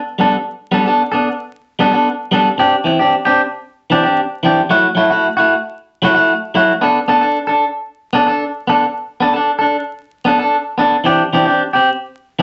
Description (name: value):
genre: highlife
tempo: 113 BPM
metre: 4/4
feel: straight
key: unclear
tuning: A4 = 440 Hz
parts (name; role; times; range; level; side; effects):
- clean electric guitar; solo; 0.2-12.4 s; E3 to A4; -14 LUFS; equal; none
room: wet studio reverb, RT60 0.6 s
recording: vinyl crackle, nothing above 8.0 kHz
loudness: -15 LUFS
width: mono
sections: 0.0-12.4 A section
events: none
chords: 0.0 Gadd9; 2.6 Cadd9; 4.7 F#m7; 6.8 Bm7; 11.1 Cadd9